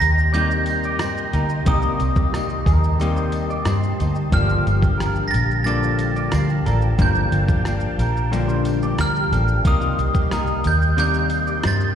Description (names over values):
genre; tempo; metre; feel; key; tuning
indie pop, bedroom pop; 90 BPM; 4/4; straight; unclear; A4 = 440 Hz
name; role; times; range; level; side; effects
glockenspiel with brass mallets; melody; 0.0-11.9 s; Eb6 to Bb6; -24 LUFS; right 2 dB; analog chorus, slapback echo
clean electric guitar; second line; 0.0-11.8 s; F4 to D5; -31 LUFS; right 6 dB; lush chorus, slapback echo, ping-pong delay
semi-hollow electric guitar; accompaniment; 0.0-11.9 s; G2 to Bb4; -25 LUFS; left 4 dB; wide subtle chorus, warbly pitch drift, slapback echo
soft string machine; sustained chords; 0.0-11.9 s; G4 to C6; -32 LUFS; left 1 dB; phaser, ensemble chorus
vintage muted fingered electric bass; bass; 0.0-11.9 s; G1 to G2; -20 LUFS; equal; none
dusty soul sampler-style drum kit; drums; 0.0-11.9 s; hi-hat, kick drum, rim click, shaker; -22 LUFS; equal; none
tambourine; percussion; 0.0-11.8 s; none; -46 LUFS; left 3 dB; none
room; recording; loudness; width
digital ambience; live gig heard through the venue's PA, recital hall reverb; -17 LUFS; side -9 dB against mid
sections
0.0-11.9 A section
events
none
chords
0.0 Cm7; 4.3 Gm9; 9.6 Cm7